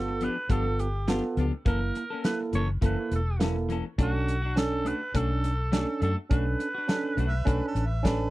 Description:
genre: straight-eighth soul blues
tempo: 103 BPM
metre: 4/4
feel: straight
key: B minor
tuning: A4 = 445 Hz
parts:
  - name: growling tenor saxophone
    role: melody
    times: 0.0-8.0 s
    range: F#4 to C#5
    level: -34 LUFS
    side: right 1 dB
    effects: none
  - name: barky tine electric piano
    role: accompaniment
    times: 0.0-8.3 s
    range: A#3 to A#4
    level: -30 LUFS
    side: right 3 dB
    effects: overdrive
  - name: vintage muted fingered electric bass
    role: bass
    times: 0.0-8.3 s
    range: E1 to F#2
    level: -28 LUFS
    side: left 1 dB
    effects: none
  - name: clean electric guitar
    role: stabs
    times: 0.1-8.2 s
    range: E3 to A4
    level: -35 LUFS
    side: left 5 dB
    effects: none
  - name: warm soul drum kit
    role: drums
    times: 0.2-8.2 s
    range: hi-hat, kick drum, snare drum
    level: -28 LUFS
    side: equal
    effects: none
  - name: warm harmonica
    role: second line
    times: 7.3-8.3 s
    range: A4 to E5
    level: -37 LUFS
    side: right 4 dB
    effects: overdrive
room: little or no reverb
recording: none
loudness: -25 LUFS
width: side -17 dB against mid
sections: 0.0-8.3 A section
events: none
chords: 0.0 G7; 1.7 F#7#9; 4.0 Bm7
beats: 0.51 1.08 | 1.67 2.25 2.83 3.40 | 3.98 4.57 5.15 5.73 | 6.31 6.89 7.47 8.05

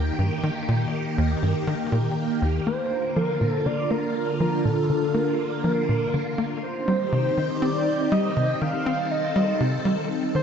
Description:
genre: ambient, sequencer-driven space music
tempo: 121 BPM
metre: 4/4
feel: straight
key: unclear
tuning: A4 = 440 Hz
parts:
  - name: phased string machine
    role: sustained chords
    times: 0.0-10.4 s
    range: D3 to A4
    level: -26 LUFS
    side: equal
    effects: ensemble chorus, phaser
  - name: tight sequencer bass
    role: riff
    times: 0.0-10.4 s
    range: Eb2 to C4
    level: -25 LUFS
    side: equal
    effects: wide subtle chorus, ping-pong delay
  - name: pulse-width lead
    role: melody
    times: 2.7-10.4 s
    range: A4 to F5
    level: -26 LUFS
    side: equal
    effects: chorus, ping-pong delay
room: wet plate reverb, RT60 3.6 s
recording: dark, warm production, nothing above 8.0 kHz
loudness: -22 LUFS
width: side -7 dB against mid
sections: 0.0-10.4 A section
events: none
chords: 0.0 Eb; 2.7 Bb; 6.6 Cm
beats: 0.19 | 0.68 1.18 1.67 2.17 | 2.67 3.16 3.66 4.15 | 4.65 5.14 5.64 6.14 | 6.63 7.13 7.62 8.12 | 8.62 9.11 9.61 10.10

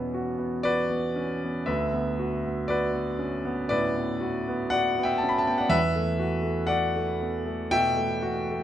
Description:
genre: classical, impressionist solo piano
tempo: 59 BPM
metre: 4/4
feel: rubato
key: E dorian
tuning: A4 = 440 Hz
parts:
  - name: clear concert grand piano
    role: solo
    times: 0.0-8.6 s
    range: D2 to B5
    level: -24 LUFS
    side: equal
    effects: none
room: moderate recital hall reverb, RT60 1.4 s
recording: none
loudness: -24 LUFS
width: side -11 dB against mid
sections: 0.0-8.6 A section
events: none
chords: 0.0 Esus2; 1.7 D69; 5.8 Em11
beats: 0.65 | 1.68 2.68 3.70 4.73 | 5.75 6.75 7.76

